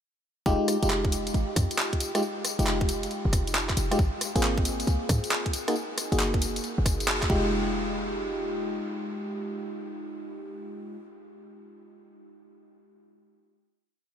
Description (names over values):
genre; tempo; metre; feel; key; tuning
UK garage, two-step garage; 136 BPM; 4/4; swing 66% on 16ths; F minor; A4 = 440 Hz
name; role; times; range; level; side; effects
FM electric piano; stabs; 0.5-11.0 s; Ab3 to Ab4; -30 LUFS; equal; chorus, vintage 12-bit sampler grit, ping-pong delay
short 808-style bass; bass; 0.5-8.8 s; F1 to Ab2; -29 LUFS; equal; tube saturation
electronic kick drum; drums; 0.5-7.4 s; none; -27 LUFS; equal; overdrive, studio reverb
garage drum kit; drums; 0.5-7.3 s; handclaps, hi-hat, rim click, tambourine; -30 LUFS; equal; overdrive, studio reverb
room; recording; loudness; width
moderate huge ambient reverb, RT60 8.0 s; dreamy mix soaked in reverb; -25 LUFS; side -9 dB against mid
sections
0.5-7.5 drop; 7.5-11.0 final hit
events
drop 0.5-7.5; band accent 7.1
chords
0.5 Fm9; 4.0 Ab69; 5.5 Gb69; 7.3 Fm9